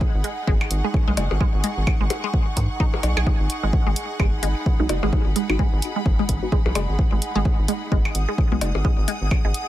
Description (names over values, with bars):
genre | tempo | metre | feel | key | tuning
minimal techno | 129 BPM | 4/4 | swing 59% on 16ths | G# minor | A4 = 440 Hz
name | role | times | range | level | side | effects
electronic kick drum | drums | 0.0-9.4 s | none | -21 LUFS | equal | none
rich symphonic string section | texture | 0.0-9.7 s | D#4 to D#6 | -31 LUFS | right 1 dB | sidechain pumping
rubbery square bass | bass | 0.1-9.5 s | F#1 to G#2 | -23 LUFS | equal | sidechain pumping
resonant blip pluck | riff | 0.2-9.5 s | D#3 to G#4 | -28 LUFS | right 1 dB | phaser, sidechain pumping, dub echo
electronic hi-hat | drums | 0.2-9.7 s | none | -28 LUFS | right 1 dB | none
percussion blips | percussion | 0.6-9.4 s | none | -29 LUFS | left 3 dB | ping-pong delay
filtered dub chord stab | stabs | 1.1-1.2, 4.8-8.7 s | G#3 to F#4 | -30 LUFS | left 1 dB | phaser, analog chorus, ping-pong delay
room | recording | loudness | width
little or no reverb | none | -19 LUFS | side -14 dB against mid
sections
0.0-9.7 A section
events
filter sweep on synth stab 0.0-9.7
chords
0.0 G#m7